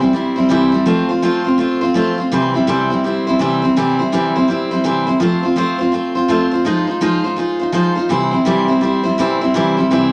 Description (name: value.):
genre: rock.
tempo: 166 BPM.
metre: 4/4.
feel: swing 64% on 8ths.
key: C major.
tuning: A4 = 440 Hz.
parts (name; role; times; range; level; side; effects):
picked steel-string acoustic guitar; solo; 0.0-10.1 s; C3 to C5; -16 LUFS; equal; none.
room: wet large studio reverb, RT60 1.4 s.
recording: none.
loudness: -16 LUFS.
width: mono.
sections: 0.0-10.1 A section.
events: none.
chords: 0.0 C; 0.9 F; 2.3 C; 5.2 F; 6.7 Fm7; 8.1 C.